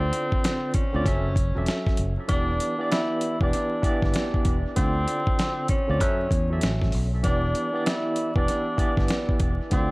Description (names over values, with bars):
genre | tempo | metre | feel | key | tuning
hip hop, boom-bap hip-hop | 97 BPM | 4/4 | swing 62% on 16ths | unclear | A4 = 436 Hz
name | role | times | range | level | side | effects
breathy tenor saxophone | melody | 0.0-9.9 s | C4 to E4 | -29 LUFS | equal | high-pass filter, low-pass filter, tape echo
barky tine electric piano | accompaniment | 0.0-9.9 s | D3 to E5 | -28 LUFS | right 1 dB | overdrive, medium tremolo, cassette tape, high-pass filter, low-pass filter, tape echo
fingered electric bass | bass | 0.0-9.9 s | E1 to F#2 | -26 LUFS | equal | none
dusty soul sampler-style drum kit | drums | 0.1-9.9 s | hi-hat, kick drum, snare drum | -25 LUFS | equal | none
room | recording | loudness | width
light reverb | echo-heavy mix, vinyl crackle | -22 LUFS | side -24 dB against mid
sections
0.0-9.9 A section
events
none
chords
0.0 Dm7; 1.1 F#m7; 2.3 Em7; 4.8 Dm7; 6.0 F#m7; 7.2 Em7